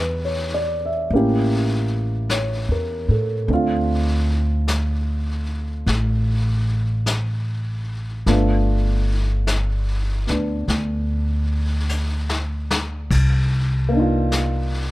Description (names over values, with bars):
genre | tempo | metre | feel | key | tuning
jazz ballad | 50 BPM | 4/4 | swing 68% on 8ths | unclear | A4 = 440 Hz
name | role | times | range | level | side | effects
dark baby grand piano | accompaniment | 0.0-14.9 s | A3 to E5 | -22 LUFS | right 1 dB | none
upright bass | bass | 0.0-14.9 s | G1 to A2 | -20 LUFS | equal | none
vintage brush drum kit | drums | 1.1-14.9 s | brushed snare drum, crash cymbal, hi-hat, kick drum, snare drum | -28 LUFS | left 2 dB | none
room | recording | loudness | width
little or no reverb | close, detailed microphones | -19 LUFS | side -18 dB against mid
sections
0.0-14.9 A section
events
drum fill 11.9-13.1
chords
0.0 Em9; 1.1 A7b9; 3.5 Dm7; 8.3 G7; 13.1 Cm11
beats
1.12 2.30 | 3.48 4.67 5.87 7.06 | 8.26 9.46 10.67 11.89 | 13.11 14.31